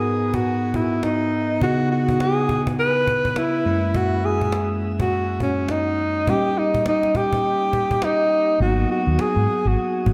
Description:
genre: R&B, new jack swing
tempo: 103 BPM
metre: 4/4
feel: swing 61% on 16ths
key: G# minor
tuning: A4 = 439 Hz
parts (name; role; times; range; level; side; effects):
- breathy alto saxophone; melody; 0.0-10.1 s; C#4 to B4; -23 LUFS; equal; shimmer reverb
- bell-like tine electric piano; accompaniment; 0.0-10.1 s; F#2 to A#4; -26 LUFS; equal; lush chorus, shimmer reverb
- cajon; drums; 0.2-10.1 s; none; -30 LUFS; equal; none
- vintage muted fingered electric bass; bass; 8.6-10.1 s; G#1 to G#2; -22 LUFS; equal; none
room: wet plate reverb, RT60 2.1 s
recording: dreamy mix soaked in reverb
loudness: -21 LUFS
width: mono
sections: 0.0-10.1 A section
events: kick muted 8.6-9.8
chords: 0.0 G#m9; 1.6 C#m7; 3.7 F#9; 6.3 D#7; 8.6 G#m9

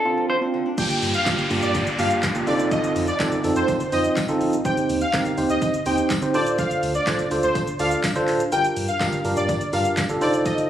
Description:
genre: dance-pop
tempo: 124 BPM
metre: 4/4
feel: straight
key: G minor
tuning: A4 = 440 Hz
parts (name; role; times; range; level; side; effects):
- nylon-string guitar; arpeggios; 0.0-0.8 s; D3 to D4; -35 LUFS; equal; sidechain pumping, tape echo
- bright tine electric piano; accompaniment; 0.1-10.7 s; Bb3 to D5; -22 LUFS; right 2 dB; none
- soft supersaw; melody; 0.8-10.6 s; C5 to G5; -25 LUFS; left 1 dB; sidechain pumping, tape echo
- saturated sub bass; bass; 0.8-10.5 s; D1 to G2; -32 LUFS; equal; sidechain pumping
- house drum kit; drums; 0.8-10.7 s; crash cymbal, handclaps, hi-hat, kick drum, shaker, snare drum; -28 LUFS; equal; none
- downlifter; sound effects; 0.8-4.7 s; none; -29 LUFS; left 1 dB; none
- tambourine; percussion; 1.0-10.6 s; none; -39 LUFS; left 2 dB; none
room: light reverb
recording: recorded on a phone in the room, club reverb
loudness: -19 LUFS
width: side -10 dB against mid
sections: 0.8-10.7 A section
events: break 0.0-0.8; drop 0.8-10.7; kick muted 8.5-9.0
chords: 0.0 Dm7; 0.8 Gm7; 2.5 F7; 4.7 Cm/Eb; 6.3 Dm7; 8.5 Gm7

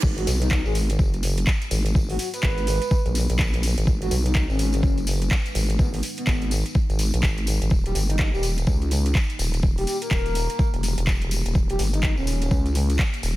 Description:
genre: bass house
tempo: 125 BPM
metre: 4/4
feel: swing 61% on 16ths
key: G# minor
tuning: A4 = 440 Hz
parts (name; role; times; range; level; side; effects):
- deep dark ambient pad; sustained chords; 0.0-13.4 s; G#3 to B4; -38 LUFS; equal; none
- vowel-sweep wobble bass; bass; 0.0-13.4 s; D#1 to C#2; -23 LUFS; equal; chorus, overdrive, sidechain pumping
- electronic kick drum; drums; 0.0-13.1 s; none; -22 LUFS; equal; overdrive
- garage drum kit; drums; 0.0-13.3 s; crash cymbal, handclaps, hi-hat; -31 LUFS; right 1 dB; overdrive
- tambourine; percussion; 0.0-13.3 s; none; -34 LUFS; left 3 dB; none
- breathy flute-like synth lead; melody; 0.2-12.7 s; B3 to B4; -30 LUFS; equal; wide subtle chorus, diffuse ambient delay
room: little or no reverb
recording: none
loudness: -20 LUFS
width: side -17 dB against mid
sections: 0.0-13.4 A section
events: drop 0.0-13.4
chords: 0.0 G#m7; 7.7 D#

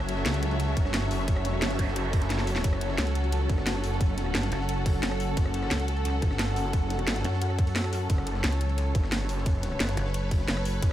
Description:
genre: dark technical drum and bass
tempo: 176 BPM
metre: 4/4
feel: straight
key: F# phrygian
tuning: A4 = 441 Hz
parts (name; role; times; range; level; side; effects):
- swarming drone; sustained chords; 0.0-10.9 s; F#3 to C#5; -34 LUFS; equal; built-in reverb, phaser, sidechain pumping
- snarling distorted saw bass; bass; 0.0-10.9 s; F#1 to C#2; -30 LUFS; equal; distortion, overdrive, sidechain pumping
- drum and bass drum kit; drums; 0.0-10.9 s; hi-hat, rim click, snare drum; -33 LUFS; equal; overdrive
- dark studio string section; texture; 0.0-10.9 s; C#4 to F#5; -35 LUFS; equal; sidechain pumping
- breakbeat sampler-style drum kit; drums; 0.1-10.9 s; hi-hat, ride cymbal, snare drum; -42 LUFS; equal; none
- electronic kick drum; drums; 0.8-10.9 s; none; -26 LUFS; equal; none
- noise sweep; sound effects; 1.5-2.6 s; none; -42 LUFS; right 4 dB; none
- pulsing pluck wobble bass; bass; 3.0-10.8 s; F#1 to F#2; -28 LUFS; equal; chorus
room: light reverb, digital ambience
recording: none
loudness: -25 LUFS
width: side -12 dB against mid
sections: 0.0-10.9 A section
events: noise sweep 1.5-2.6; drum fill 2.3-2.6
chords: 0.0 F#m

